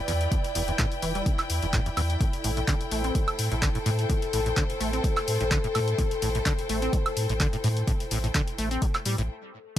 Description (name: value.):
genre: acid house.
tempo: 127 BPM.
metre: 4/4.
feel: swing 54% on 16ths.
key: unclear.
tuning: A4 = 440 Hz.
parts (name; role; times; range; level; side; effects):
warbly tape-like pad; sustained chords; 0.0-9.8 s; A4 to D5; -34 LUFS; left 2 dB; chorus, built-in reverb, sidechain pumping.
rich studio string section; texture; 0.0-9.3 s; E4 to G5; -33 LUFS; left 1 dB; sidechain pumping.
acid bass, saw; riff; 0.1-9.8 s; E2 to C4; -31 LUFS; equal; ensemble chorus, dub echo.
warm sub bass; bass; 0.1-9.3 s; E1 to A2; -29 LUFS; equal; tube saturation, sidechain pumping.
punchy analog drum machine; drums; 0.1-9.8 s; crash cymbal, handclaps, hi-hat, ride cymbal, woodblock; -31 LUFS; equal; overdrive.
electronic kick drum; drums; 0.3-9.8 s; none; -27 LUFS; equal; overdrive.
room: light reverb.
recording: none.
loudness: -24 LUFS.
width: side -12 dB against mid.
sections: 0.0-9.8 A section.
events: stop 9.3-9.8.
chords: 0.0 Em7; 2.2 Am7.